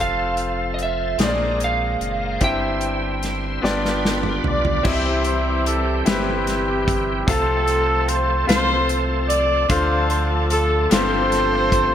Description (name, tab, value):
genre	slow gospel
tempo	49 BPM (dotted quarters)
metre	6/8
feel	straight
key	C major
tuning	A4 = 440 Hz
part	electric slide guitar	melody	0.0-4.4 s	D5 to G5	-25 LUFS	right 3 dB	none
part	bright concert grand piano	accompaniment	0.0-11.9 s	G2 to F5	-24 LUFS	left 3 dB	none
part	bright tonewheel organ	sustained chords	0.0-11.9 s	E3 to C5	-28 LUFS	right 2 dB	slow rotary speaker, overdrive, chorus vibrato
part	warm sub bass	bass	0.0-11.9 s	F1 to D2	-25 LUFS	equal	none
part	natural country drum kit	drums	0.4-11.9 s	crash cymbal, hi-hat, kick drum, snare drum, toms	-23 LUFS	equal	gated reverb
part	dark horn section	melody	4.5-11.9 s	C4 to D5	-20 LUFS	equal	none
room	moderate lush hall reverb, RT60 2.6 s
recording	bright 1980s-style digital production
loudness	-18 LUFS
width	side -10 dB against mid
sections	0.0-4.9 A section; 4.9-11.9 B section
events	drum fill 3.6-4.9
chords	0.0 F; 1.2 Bb9; 2.4 C/G; 3.6 G7; 4.9 C; 7.3 F/C; 9.7 Dm; 10.9 G9sus4